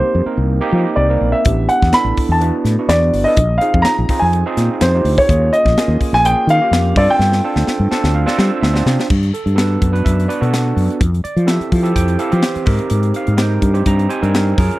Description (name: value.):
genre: electric jazz fusion.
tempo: 126 BPM.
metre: 4/4.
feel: swing 53% on 16ths.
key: unclear.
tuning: A4 = 440 Hz.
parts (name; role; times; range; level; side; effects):
dark concert grand piano; melody; 0.0-8.6 s; C5 to B5; -15 LUFS; equal; slapback echo.
overdriven tine electric piano; accompaniment; 0.0-14.8 s; E3 to Bb5; -20 LUFS; right 3 dB; wide subtle chorus.
mellow fretless electric bass; bass; 0.0-14.7 s; G1 to G3; -15 LUFS; equal; none.
crisp fusion drum kit; drums; 1.4-14.8 s; crash cymbal, hi-hat, kick drum, snare drum; -19 LUFS; left 1 dB; none.
room: studio ambience.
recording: dry, close 1970s-style studio recording.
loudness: -12 LUFS.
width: side -17 dB against mid.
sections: 0.0-9.1 A section; 9.1-14.8 B section.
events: drum fill 7.2-9.1; tine electric piano fill 7.7-9.1.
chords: 0.0 F9sus4; 1.5 A9sus4; 3.4 Bb9sus4; 5.3 Eb9sus4; 7.0 G9sus4; 9.1 Gmaj9; 11.0 Fmaj9; 12.7 Abmaj9.